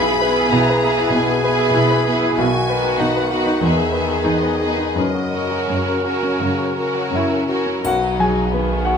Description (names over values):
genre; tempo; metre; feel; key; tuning
classical, romantic movement for piano and orchestra; 80-100 BPM; 4/4; rubato; B major; A4 = 441 Hz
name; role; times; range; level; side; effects
clear grand piano; melody; 0.0-9.0 s; B1 to G#5; -20 LUFS; left 2 dB; none
rich studio violin section; melody; 0.0-9.0 s; G#4 to B5; -26 LUFS; left 2 dB; none
clear clarinet; second line; 0.0-7.5 s; F#4 to A#4; -26 LUFS; right 1 dB; none
rich studio violin section; second line; 0.0-9.0 s; B3 to B4; -24 LUFS; left 2 dB; none
mellow bassoon; accompaniment; 0.0-7.5 s; C#3 to E3; -27 LUFS; right 4 dB; none
warm studio viola section; accompaniment; 0.0-9.0 s; D#3 to E4; -25 LUFS; right 3 dB; none
warm studio cello section; bass; 0.0-7.7 s; E2 to B2; -24 LUFS; right 3 dB; none
triangle; percussion; 7.8-9.0 s; none; -35 LUFS; equal; none
rich studio double bass section; bass; 7.9-9.0 s; B1; -23 LUFS; right 4 dB; none
room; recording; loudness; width
moderate recital hall reverb, RT60 1.4 s; close, detailed microphones; -16 LUFS; side -6 dB against mid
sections
0.0-7.8 A section; 7.8-9.0 B section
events
none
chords
0.0 E/B; 2.4 B; 3.6 Emaj7; 5.0 F#; 7.8 B